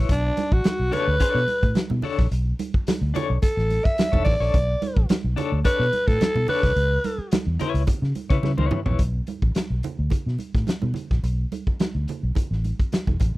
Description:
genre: funk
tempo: 108 BPM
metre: 4/4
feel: straight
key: B minor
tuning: A4 = 440 Hz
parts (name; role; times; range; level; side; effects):
- clean electric guitar; accompaniment; 0.0-9.0 s; D4 to C#5; -27 LUFS; left 8 dB; tremolo
- vintage muted fingered electric bass; bass; 0.0-13.4 s; E1 to C#3; -23 LUFS; equal; tube saturation
- growling alto saxophone; melody; 0.1-7.3 s; D4 to E5; -23 LUFS; equal; slapback echo
- raw garage drum kit; drums; 0.1-13.3 s; hi-hat, kick drum, snare drum, toms; -23 LUFS; equal; none
- congas; percussion; 0.1-13.3 s; none; -30 LUFS; right 6 dB; none
room: little or no reverb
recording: dry, close 1970s-style studio recording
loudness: -20 LUFS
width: side -18 dB against mid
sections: 0.0-9.0 A section; 9.0-13.4 B section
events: alto saxophone solo 0.0-9.0; drum fill 8.4-9.0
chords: 0.1 Bm9; 6.8 C#m7; 9.0 B7(no3)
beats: | 0.09 0.65 1.21 1.76 | 2.32 2.87 3.43 3.98 | 4.54 5.09 5.65 6.21 | 6.76 7.32 7.88 8.44 | 8.99 9.55 10.12 10.68 | 11.24 11.80 12.36 12.92

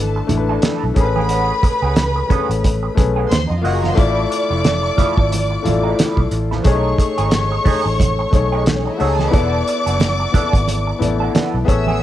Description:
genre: lush 1970s-style soul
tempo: 90 BPM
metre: 4/4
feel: swing 58% on 16ths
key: unclear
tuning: A4 = 436 Hz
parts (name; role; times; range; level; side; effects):
- warm studio string section; second line; 0.0-12.0 s; C#4 to E6; -22 LUFS; equal; cassette tape
- warm grand piano; accompaniment; 0.0-12.0 s; A3 to D#5; -21 LUFS; left 6 dB; cassette tape
- vintage muted fingered electric bass; bass; 0.0-12.0 s; E1 to E#2; -20 LUFS; right 1 dB; none
- electric guitar through a small old amp; riff; 0.2-12.0 s; F3 to A4; -25 LUFS; right 9 dB; wah, cassette tape
- cloth-damped thuddy drum kit; drums; 0.3-11.9 s; hi-hat, kick drum, snare drum; -18 LUFS; right 1 dB; none
- congas; percussion; 0.3-12.0 s; none; -26 LUFS; right 7 dB; none
room: light reverb, small room ambience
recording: home recording on cassette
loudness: -14 LUFS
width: side -12 dB against mid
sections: 0.0-12.0 A section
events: none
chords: 0.0 E7sus4; 1.0 Amaj9; 3.3 D#madd9; 4.0 Dmadd9; 6.7 B13; 9.3 E7sus4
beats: 0.63 | 1.30 1.97 2.64 3.31 | 3.98 4.65 5.32 5.99 | 6.66 7.33 8.00 8.67 | 9.34 10.01 10.68 11.35 | 12.02

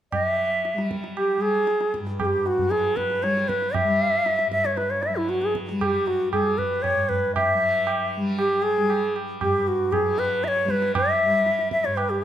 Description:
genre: indian classical, Hindustani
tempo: 116 BPM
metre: 7/4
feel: straight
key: G raga marwa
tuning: A4 = 443 Hz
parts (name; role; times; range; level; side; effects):
- bright bansuri; melody; 0.1-12.2 s; E4 to E5; -22 LUFS; equal; none
- tanpura; drone; 0.1-12.2 s; G2 to G3; -30 LUFS; left 1 dB; none
- tabla; percussion; 0.1-12.2 s; none; -30 LUFS; right 3 dB; none
room: moderate recital hall reverb, RT60 1.5 s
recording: none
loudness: -20 LUFS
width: side -10 dB against mid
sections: 0.1-12.2 A section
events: none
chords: none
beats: | 0.13 0.65 1.16 1.68 2.20 2.71 3.23 | 3.75 4.26 4.78 5.30 5.81 6.33 6.84 | 7.36 7.87 8.38 8.90 9.41 9.93 10.44 | 10.95 11.46 11.98

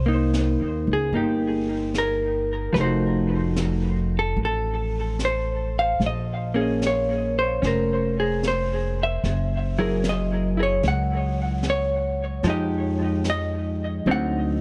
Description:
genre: jazz ballad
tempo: 74 BPM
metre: 4/4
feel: swing 67% on 8ths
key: unclear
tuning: A4 = 440 Hz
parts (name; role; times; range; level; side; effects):
- vintage hollow-body jazz guitar; accompaniment; 0.0-14.6 s; D3 to Gb5; -26 LUFS; equal; dub echo
- upright bass; bass; 0.0-14.6 s; F1 to F2; -28 LUFS; equal; none
- jazz brush drum kit; drums; 0.3-14.6 s; brushed snare drum, hi-hat, snare drum; -37 LUFS; equal; vintage 12-bit sampler grit
room: light reverb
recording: echo-heavy mix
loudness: -24 LUFS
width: mono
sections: 0.0-14.6 A section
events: none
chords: 0.0 Cm7; 2.7 F7b9; 6.0 Bbm9; 9.2 Gb7sus2; 12.4 Fm9; 14.1 D7b9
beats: 0.33 1.13 1.94 | 2.74 3.56 4.37 5.18 | 6.00 6.81 7.62 8.43 | 9.23 10.04 10.84 11.64 | 12.44 13.25 14.06

